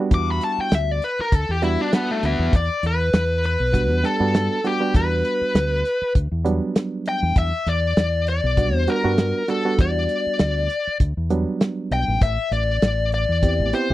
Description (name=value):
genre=straight-eighth soul blues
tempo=99 BPM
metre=4/4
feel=swing 56% on 16ths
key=E minor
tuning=A4 = 440 Hz
part: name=barky reed electric piano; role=accompaniment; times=0.0-13.9 s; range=F#3 to G4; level=-24 LUFS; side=right 4 dB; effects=overdrive
part: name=smooth overdriven lead guitar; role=melody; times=0.1-13.9 s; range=A3 to D6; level=-22 LUFS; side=left 2 dB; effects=none
part: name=bright horn section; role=sustained chords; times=0.1-2.2 s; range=D4 to A4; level=-35 LUFS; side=left 1 dB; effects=none
part: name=fingered electric bass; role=bass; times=0.1-13.9 s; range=A1 to G2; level=-22 LUFS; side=equal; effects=none
part: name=warm soul drum kit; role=drums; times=0.1-13.9 s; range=hi-hat, kick drum, snare drum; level=-18 LUFS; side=equal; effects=none
room=little or no reverb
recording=dry, close 1970s-style studio recording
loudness=-18 LUFS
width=side -15 dB against mid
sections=0.0-2.5 A section; 2.5-13.9 B section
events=lead electric guitar solo 0.0-2.5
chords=0.0 Em7; 12.2 Am7